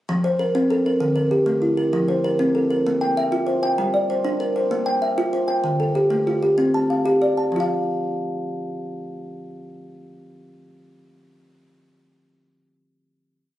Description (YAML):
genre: southern african traditional, mbira-style interlocking cycle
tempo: 129 BPM (dotted quarters)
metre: 12/8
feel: straight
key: F major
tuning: A4 = 442 Hz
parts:
  - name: kalimba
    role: solo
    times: 0.1-10.6 s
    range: D3 to A5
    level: -19 LUFS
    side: equal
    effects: none
room: light reverb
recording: recorded on a phone in the room, club reverb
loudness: -18 LUFS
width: side -14 dB against mid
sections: 0.1-7.5 A section; 7.5-11.2 final note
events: none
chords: 0.1 F; 1.0 D5; 1.9 F; 2.9 Bb5; 3.8 Gm; 4.7 Bb5; 5.6 Dm; 6.6 C5; 7.5 N.C.